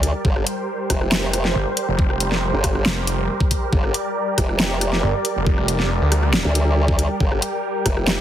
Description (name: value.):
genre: heavy wobble dubstep.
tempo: 138 BPM.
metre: 4/4.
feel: half-time.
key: G minor.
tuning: A4 = 441 Hz.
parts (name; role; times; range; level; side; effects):
supersaw chords; sustained chords; 0.0-8.2 s; G3 to G5; -24 LUFS; right 1 dB; phaser, vintage 12-bit sampler grit, sidechain pumping, low-pass filter.
formant-sweep wobble bass; bass; 0.0-8.2 s; F1 to D2; -21 LUFS; equal; chorus, overdrive.
dubstep drum kit; drums; 0.0-8.2 s; hi-hat, rim click, snare drum; -22 LUFS; equal; overdrive, small room reverb.
electronic kick drum; drums; 0.2-7.9 s; none; -20 LUFS; equal; overdrive, small room reverb.
snarling distorted saw bass; bass; 1.6-6.4 s; F1 to D2; -21 LUFS; equal; distortion, overdrive.
room: light reverb.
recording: heavily compressed radio sound.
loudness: -18 LUFS.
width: side -11 dB against mid.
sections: 0.0-8.2 A section.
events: none.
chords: 0.0 Gm.